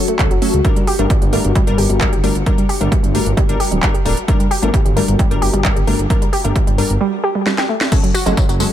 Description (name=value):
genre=driving peak-time techno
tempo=132 BPM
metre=4/4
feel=straight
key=unclear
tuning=A4 = 440 Hz
part: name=wavetable chord stab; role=stabs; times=0.0-8.7 s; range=F#3 to Bb4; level=-22 LUFS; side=left 3 dB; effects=cassette tape, sidechain pumping, tape echo
part: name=swarming drone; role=drone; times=0.0-8.7 s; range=C#4 to F#4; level=-26 LUFS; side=left 3 dB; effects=built-in reverb, sidechain pumping
part: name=warbly dusty pluck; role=riff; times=0.1-8.7 s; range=F#3 to G4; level=-21 LUFS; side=right 1 dB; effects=chorus, sidechain pumping, ping-pong delay
part: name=techno drum kit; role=drums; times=0.1-8.7 s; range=crash cymbal, handclaps, hi-hat, snare drum, tambourine, toms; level=-22 LUFS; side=right 1 dB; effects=sidechain pumping on hats, sidechain pumping on cymbals, sidechain pumping on perc, sidechain pumping on toms
part: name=dark detuned saw bass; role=bass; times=0.2-8.6 s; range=D1 to C#2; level=-18 LUFS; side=equal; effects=sidechain pumping
part: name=electronic kick drum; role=drums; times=0.2-8.5 s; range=none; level=-16 LUFS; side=equal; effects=none
room=digital ambience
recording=none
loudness=-13 LUFS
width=side -11 dB against mid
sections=0.0-7.9 A section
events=drum fill 7.5-7.9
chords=0.0 F#m; 0.6 Gm; 7.9 F#m